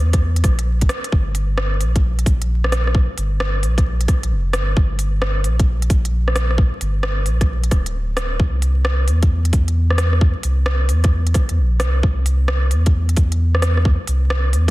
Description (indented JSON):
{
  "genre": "future garage",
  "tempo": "132 BPM",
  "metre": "4/4",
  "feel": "swing 66% on 16ths",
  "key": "G dorian",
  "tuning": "A4 = 442 Hz",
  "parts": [
    { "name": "warm sub bass", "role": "bass", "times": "0.0-14.7 s", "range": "D1 to E2", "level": "-17 LUFS", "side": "equal", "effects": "tube saturation, sidechain pumping" },
    { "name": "electronic kick drum", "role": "drums", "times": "0.1-14.7 s", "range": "none", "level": "-17 LUFS", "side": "equal", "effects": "none" },
    { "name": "organic electronic drum kit", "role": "drums", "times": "0.1-14.7 s", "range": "hi-hat, rim click", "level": "-25 LUFS", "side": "equal", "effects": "none" }
  ],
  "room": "little or no reverb",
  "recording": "dense, heavily limited modern master, vinyl crackle",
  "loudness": "-15 LUFS",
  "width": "side -19 dB against mid",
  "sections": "0.0-1.1 A section; 1.1-14.7 A section",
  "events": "none",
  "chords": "none"
}